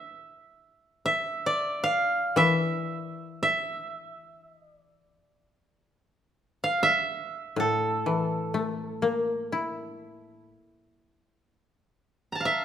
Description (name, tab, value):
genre	japanese traditional, Japanese chamber music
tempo	free time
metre	none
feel	none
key	A miyako bushi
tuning	A4 = 440 Hz
part	koto	melody	0.0-12.6 s	A4 to Bb5	-26 LUFS	right 2 dB	none
part	koto	accompaniment	2.4-11.6 s	A2 to E4	-27 LUFS	left 4 dB	none
room	moderate recital hall reverb, RT60 1.6 s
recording	none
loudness	-25 LUFS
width	side -9 dB against mid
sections	0.0-11.6 A section; 11.6-12.6 A section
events	none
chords	none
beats	free time